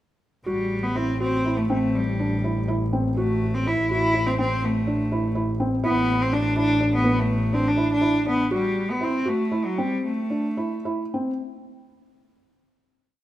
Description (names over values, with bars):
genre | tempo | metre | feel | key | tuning
contemporary instrumental, chamber music in an uneven meter | 245 BPM (eighths) | 11/8 | straight | A dorian | A4 = 440 Hz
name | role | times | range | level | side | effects
rich cello | melody | 0.5-10.8 s | F#3 to E4 | -24 LUFS | equal | none
felt-muted upright piano | arpeggios | 0.5-11.3 s | B3 to F#4 | -26 LUFS | equal | none
dark double bass | bass | 0.5-8.5 s | A1 | -26 LUFS | equal | none
room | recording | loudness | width
light reverb | minimal, uncompressed stereo recording | -21 LUFS | side -14 dB against mid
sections
0.5-11.4 A section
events
slowing down 7.3-11.4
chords
0.5 Am7; 5.8 Asus24; 8.5 Am